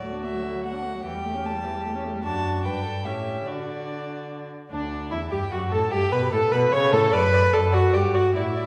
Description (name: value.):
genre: quick classical-period movement for string quartet.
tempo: 149 BPM.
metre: 3/4.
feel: straight.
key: D major.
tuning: A4 = 440 Hz.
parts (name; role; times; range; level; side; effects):
warm violin; melody; 0.0-8.7 s; D5 to C#6; -36 LUFS; equal; none.
dark violin; second line; 0.0-8.6 s; D4 to D5; -32 LUFS; equal; none.
rich viola; accompaniment; 0.0-8.7 s; D3 to C#5; -27 LUFS; equal; none.
warm cello; bass; 0.0-8.7 s; D2 to D3; -30 LUFS; equal; none.
room: wet scoring stage reverb, RT60 1.6 s.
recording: heard from further back in the room.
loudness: -24 LUFS.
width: mono.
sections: 0.0-4.7 A section; 4.7-8.7 B section.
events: none.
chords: 0.0 D; 1.1 A7/E; 2.2 D/F#; 2.6 G; 3.1 A7; 3.5 D; 5.9 A7; 7.1 D/F#; 7.9 G5.